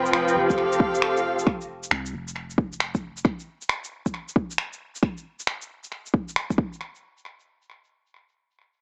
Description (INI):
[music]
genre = future garage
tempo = 135 BPM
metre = 4/4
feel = swing 65% on 16ths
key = unclear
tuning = A4 = 438 Hz
[part]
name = rich studio string section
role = sustained chords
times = 0.0-1.5 s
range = F3 to G5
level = -24 LUFS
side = equal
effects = sidechain pumping
[part]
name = soft 808-style bass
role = bass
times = 0.0-3.2 s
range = F1 to C2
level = -42 LUFS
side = equal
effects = tube saturation, sidechain pumping
[part]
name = electronic shaker and finger snaps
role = drums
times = 0.1-6.6 s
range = none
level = -30 LUFS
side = equal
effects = vintage 12-bit sampler grit, small room ambience, tape echo
[part]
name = electronic kick drum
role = drums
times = 0.5-6.7 s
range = none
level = -26 LUFS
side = equal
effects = vintage 12-bit sampler grit, small room ambience
[sound]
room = moderate spring reverb, RT60 1.3 s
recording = echo-heavy mix, small speaker sound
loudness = -26 LUFS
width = mono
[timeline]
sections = 0.0-6.8 A section; 6.8-8.8 B section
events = none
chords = 0.0 Fadd9; 3.2 N.C.